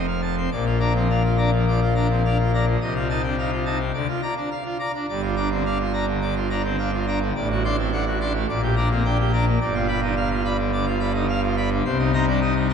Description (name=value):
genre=classical, organ toccata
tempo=106 BPM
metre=4/4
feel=straight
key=Bb major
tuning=A4 = 439 Hz
part: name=pipe organ, full organ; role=solo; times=0.0-12.7 s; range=F1 to C6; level=-20 LUFS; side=equal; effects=none
room=wet church reverb, RT60 3.4 s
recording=dark, warm production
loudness=-20 LUFS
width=side -7 dB against mid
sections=0.5-12.7 A section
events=none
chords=0.0 F; 0.5 Bb; 2.8 F7/C; 3.9 Bb/D; 5.1 Gm7; 7.3 D7/A; 8.5 Gm/Bb; 9.6 G7; 11.9 Cm7